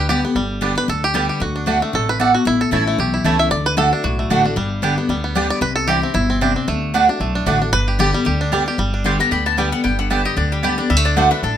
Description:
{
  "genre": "bluegrass",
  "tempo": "228 BPM",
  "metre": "4/4",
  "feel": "swing 55% on 8ths",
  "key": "G major",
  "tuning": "A4 = 441 Hz",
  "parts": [
    { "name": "bluegrass banjo", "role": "melody", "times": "0.0-11.6 s", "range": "D3 to E5", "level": "-21 LUFS", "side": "right 1 dB", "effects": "none" },
    { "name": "picked steel-string acoustic guitar", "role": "accompaniment", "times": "0.0-11.6 s", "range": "E2 to G4", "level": "-20 LUFS", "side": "left 3 dB", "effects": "none" },
    { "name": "upright bass", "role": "bass", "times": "0.0-11.6 s", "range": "G1 to D2", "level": "-23 LUFS", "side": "equal", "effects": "none" },
    { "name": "mandolin", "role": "stabs", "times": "0.1-11.3 s", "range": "A3 to A5", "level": "-19 LUFS", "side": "right 5 dB", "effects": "none" },
    { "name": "mandolin", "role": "melody", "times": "9.1-11.6 s", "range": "G4 to C6", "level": "-22 LUFS", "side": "left 7 dB", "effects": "none" }
  ],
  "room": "moderate studio reverb, RT60 0.6 s",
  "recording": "minimal, uncompressed stereo recording",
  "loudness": "-15 LUFS",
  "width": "side -10 dB against mid",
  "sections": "0.4-8.8 A section; 8.8-11.6 B section",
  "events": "five-string banjo solo 0.0-8.8",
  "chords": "0.4 G; 1.4 D; 2.5 A; 3.5 D; 4.6 G; 5.6 Cadd9; 6.7 D; 7.7 G; 10.9 D",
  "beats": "0.10 | 0.36 0.62 0.89 1.15 | 1.41 1.68 1.94 2.20 | 2.47 2.73 2.99 3.26 | 3.52 3.78 4.05 4.31 | 4.57 4.84 5.10 5.36 | 5.63 5.89 6.16 6.42 | 6.68 6.95 7.21 7.47 | 7.74 8.00 8.26 8.53 | 8.79 9.05 9.32 9.58 | 9.85 10.11 10.38 10.64 | 10.90 11.17 11.43"
}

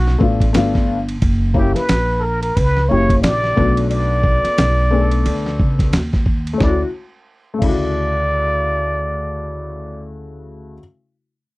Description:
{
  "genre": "hip hop, jazz-hop",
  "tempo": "89 BPM",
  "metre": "4/4",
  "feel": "swing 59% on 16ths",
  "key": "D major",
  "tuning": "A4 = 436 Hz",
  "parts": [
    { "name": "trumpet with plunger mute", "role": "melody", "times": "0.0-10.1 s", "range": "F#4 to D5", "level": "-20 LUFS", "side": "equal", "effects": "none" },
    { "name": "upright bass", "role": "bass", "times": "0.0-10.8 s", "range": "F#1 to Eb2", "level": "-19 LUFS", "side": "equal", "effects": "none" },
    { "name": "dusty soul sampler-style drum kit", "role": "drums", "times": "0.1-7.8 s", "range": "crash cymbal, hi-hat, kick drum, ride cymbal, snare drum", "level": "-19 LUFS", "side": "equal", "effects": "overdrive" },
    { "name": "dark upright piano", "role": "accompaniment", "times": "0.2-10.8 s", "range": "C#3 to A4", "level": "-22 LUFS", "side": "left 4 dB", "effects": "none" }
  ],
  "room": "little or no reverb",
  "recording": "dry, close 1970s-style studio recording",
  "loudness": "-14 LUFS",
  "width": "side -21 dB against mid",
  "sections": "0.0-6.6 A section; 6.6-9.3 B section",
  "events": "none",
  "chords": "0.0 D; 0.5 G9; 1.2 F#7b9; 3.6 Bm7; 6.6 Dmaj9",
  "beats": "0.54 | 1.21 1.89 2.56 3.24 | 3.91 4.58 5.26 5.93 | 6.61 7.28 7.96 8.63"
}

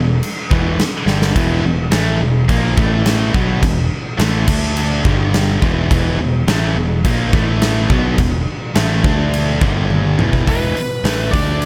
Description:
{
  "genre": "hard rock",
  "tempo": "105 BPM",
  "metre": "4/4",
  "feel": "straight",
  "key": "E minor",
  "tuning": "A4 = 440 Hz",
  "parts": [
    { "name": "heavy high-gain guitar", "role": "riff", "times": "0.0-11.7 s", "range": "E2 to D4", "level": "-23 LUFS", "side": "equal", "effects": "distortion" },
    { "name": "sludgy distorted guitar", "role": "riff", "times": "0.0-11.7 s", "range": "E2 to D4", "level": "-24 LUFS", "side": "equal", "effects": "overdrive" },
    { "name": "picked electric bass", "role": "bass", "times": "0.0-11.7 s", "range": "E1 to D2", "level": "-21 LUFS", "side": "equal", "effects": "none" },
    { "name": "huge arena drum kit", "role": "drums", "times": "0.2-11.7 s", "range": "crash cymbal, hi-hat, kick drum, snare drum, toms", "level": "-20 LUFS", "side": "equal", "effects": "none" },
    { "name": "biting lead guitar", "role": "melody", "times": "10.5-11.7 s", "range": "B4 to D5", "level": "-24 LUFS", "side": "equal", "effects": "overdrive" }
  ],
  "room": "little or no reverb",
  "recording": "none",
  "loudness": "-16 LUFS",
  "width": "mono",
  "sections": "0.0-10.5 A section; 10.5-11.7 B section",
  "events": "drum fill 1.1, 9.9-10.5",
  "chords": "0.0 Em; 2.8 A5; 3.3 E5; 4.5 D5; 5.0 G5; 5.6 E5; 7.3 A5; 7.9 E5; 9.1 D5; 9.6 G5; 10.2 E5",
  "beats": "0.23 0.79 | 1.36 1.92 2.49 3.06 | 3.62 4.19 4.76 5.33 | 5.91 6.48 7.05 7.62 | 8.19 8.77 9.34 9.91 | 10.48 11.06 11.63"
}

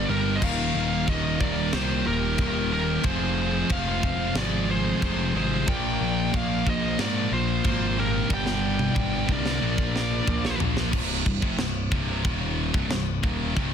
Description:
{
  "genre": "heavy metal",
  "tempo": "91 BPM",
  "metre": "4/4",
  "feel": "straight",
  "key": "C minor",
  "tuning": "A4 = 441 Hz",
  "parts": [
    { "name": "high-gain lead guitar", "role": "melody", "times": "0.0-10.6 s", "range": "Bb4 to G5", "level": "-30 LUFS", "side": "left 1 dB", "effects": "distortion, ping-pong delay" },
    { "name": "high-gain lead guitar", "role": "second line", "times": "0.0-10.6 s", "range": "F4 to D5", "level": "-37 LUFS", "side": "right 6 dB", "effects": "distortion" },
    { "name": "high-gain distorted guitar", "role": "riff", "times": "0.0-13.7 s", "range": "C2 to Bb3", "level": "-29 LUFS", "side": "left 1 dB", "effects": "distortion" },
    { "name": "thick fuzz guitar", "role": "riff", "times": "0.0-10.9 s", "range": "Eb2 to Bb4", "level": "-29 LUFS", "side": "equal", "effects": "distortion" },
    { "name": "fuzz picked electric bass", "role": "bass", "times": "0.0-13.7 s", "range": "C1 to Ab2", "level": "-29 LUFS", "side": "equal", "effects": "overdrive" },
    { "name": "tight metal drum kit", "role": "drums", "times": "0.4-13.7 s", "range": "china cymbal, crash cymbal, kick drum, snare drum, toms", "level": "-29 LUFS", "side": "equal", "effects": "soft clipping on kick" }
  ],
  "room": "little or no reverb",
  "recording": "dense, heavily limited modern master",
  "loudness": "-22 LUFS",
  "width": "side -8 dB against mid",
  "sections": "0.0-10.9 A section; 10.9-13.7 B section",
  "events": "half time 0.0-10.9; drum fill 8.3-10.9",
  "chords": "0.4 Eb; 3.0 Fm; 5.7 Bb; 8.3 Gm; 9.6 Bb; 10.9 Cm",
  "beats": "| 0.41 1.07 1.73 2.38 | 3.04 3.70 4.36 5.01 | 5.67 6.33 6.99 7.64 | 8.30 8.96 9.62 10.27 | 10.93 11.59 12.25 12.91 | 13.57"
}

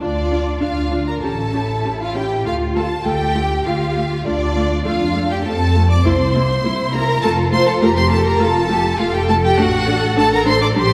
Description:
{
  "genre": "quick classical-period movement for string orchestra",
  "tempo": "101 BPM",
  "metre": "4/4",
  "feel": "rubato",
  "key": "D minor",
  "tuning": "A4 = 440 Hz",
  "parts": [
    { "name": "warm studio violin section", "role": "melody", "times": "0.0-10.9 s", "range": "D5 to D6", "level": "-24 LUFS", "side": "equal", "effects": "none" },
    { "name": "warm symphonic violin section", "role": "second line", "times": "0.0-10.9 s", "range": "D4 to D5", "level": "-24 LUFS", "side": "equal", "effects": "none" },
    { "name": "warm symphonic viola section", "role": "accompaniment", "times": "0.0-10.8 s", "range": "G3 to G4", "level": "-25 LUFS", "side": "equal", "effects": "none" },
    { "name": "dark symphonic double bass section", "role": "bass", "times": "0.0-10.9 s", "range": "F1 to F2", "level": "-22 LUFS", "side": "equal", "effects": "none" },
    { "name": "warm symphonic cello section", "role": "bass", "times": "0.0-10.9 s", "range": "C4 to A4", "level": "-26 LUFS", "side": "equal", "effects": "none" }
  ],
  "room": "wet scoring stage reverb, RT60 2.0 s",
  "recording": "heard from further back in the room",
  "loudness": "-17 LUFS",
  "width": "mono",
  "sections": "0.0-10.9 A section",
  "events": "none",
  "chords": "0.0 Dm; 1.2 A7; 2.5 Dm; 4.9 F; 6.0 C7; 7.2 F; 9.6 D/A",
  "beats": "| 0.01 0.62 1.23 1.84 | 2.45 3.06 3.66 4.25 | 4.85 5.45 6.05 6.64 | 7.23 7.81 8.40 8.99 | 9.58 10.17 10.76"
}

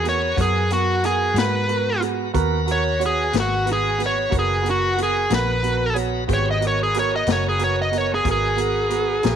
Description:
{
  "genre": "slow blues",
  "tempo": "61 BPM (dotted quarters)",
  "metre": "12/8",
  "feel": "straight",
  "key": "G# minor",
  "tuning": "A4 = 440 Hz",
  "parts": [
    { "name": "smooth overdriven lead guitar", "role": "melody", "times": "0.0-9.4 s", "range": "F#4 to D#5", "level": "-21 LUFS", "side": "equal", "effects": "slapback echo" },
    { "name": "dark upright piano", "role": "accompaniment", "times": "0.0-9.4 s", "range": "B3 to C#5", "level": "-26 LUFS", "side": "right 12 dB", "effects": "none" },
    { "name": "bright tonewheel organ", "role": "sustained chords", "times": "0.0-9.4 s", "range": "B3 to A#5", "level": "-31 LUFS", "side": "left 1 dB", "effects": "overdrive, slow rotary speaker" },
    { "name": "vintage muted fingered electric bass", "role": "bass", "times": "0.0-9.4 s", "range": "F#1 to G#2", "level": "-25 LUFS", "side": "left 1 dB", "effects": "none" },
    { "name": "vintage drum kit", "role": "drums", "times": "0.1-9.4 s", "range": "hi-hat, kick drum, snare drum", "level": "-26 LUFS", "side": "left 6 dB", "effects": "none" }
  ],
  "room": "light reverb, small room ambience",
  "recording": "1960s-style stereo with parts hard left and right",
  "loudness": "-18 LUFS",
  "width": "side -8 dB against mid",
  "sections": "0.0-9.4 A section",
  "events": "lead electric guitar solo 0.0-9.4",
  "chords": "0.0 G#m7",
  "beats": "0.37 1.35 | 2.34 3.32 4.31 5.29 | 6.28 7.26 8.24 9.23"
}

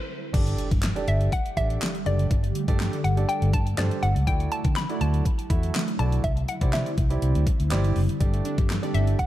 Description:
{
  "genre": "dance-pop",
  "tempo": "122 BPM",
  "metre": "4/4",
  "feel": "straight",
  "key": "unclear",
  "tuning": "A4 = 438 Hz",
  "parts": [
    { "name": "warm grand piano", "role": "accompaniment", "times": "0.3-9.2 s", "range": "D4 to E5", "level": "-33 LUFS", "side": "right 5 dB", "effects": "sidechain pumping" },
    { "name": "ethereal airy pad", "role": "sustained chords", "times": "0.3-9.3 s", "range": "D3 to A4", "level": "-33 LUFS", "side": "right 1 dB", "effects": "ensemble chorus, built-in reverb, phaser, sidechain pumping" },
    { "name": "vintage muted fingered electric bass", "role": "bass", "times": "0.3-9.1 s", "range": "F#1 to D3", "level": "-24 LUFS", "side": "equal", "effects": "sidechain pumping" },
    { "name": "pop drum kit", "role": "drums", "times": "0.3-9.3 s", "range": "crash cymbal, handclaps, hi-hat, kick drum, snare drum", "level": "-26 LUFS", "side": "equal", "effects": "overdrive" },
    { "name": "impact", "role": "sound effects", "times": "0.3-2.3 s", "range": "none", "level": "-36 LUFS", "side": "equal", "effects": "none" },
    { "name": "hollow square pluck", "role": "melody", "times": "1.1-9.3 s", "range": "D5 to B5", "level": "-31 LUFS", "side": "left 1 dB", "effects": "chorus, tape echo" },
    { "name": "glassy wavetable pluck", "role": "arpeggios", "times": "8.2-9.1 s", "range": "G3 to D5", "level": "-35 LUFS", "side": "equal", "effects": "chorus, sidechain pumping, tape echo" }
  ],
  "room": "little or no reverb",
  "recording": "none",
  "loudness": "-22 LUFS",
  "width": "side -14 dB against mid",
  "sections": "0.3-9.3 A section",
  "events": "riser 0.0-0.3; stop 0.0-0.3; impact 0.3-2.3",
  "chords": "0.3 Gsus2; 4.3 Dadd9; 6.2 Cadd9; 8.2 Gsus2",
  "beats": "| 0.34 0.83 1.32 1.81 | 2.31 2.80 3.29 3.78 | 4.27 4.76 5.26 5.75 | 6.24 6.73 7.22 7.71 | 8.21 8.70 9.19"
}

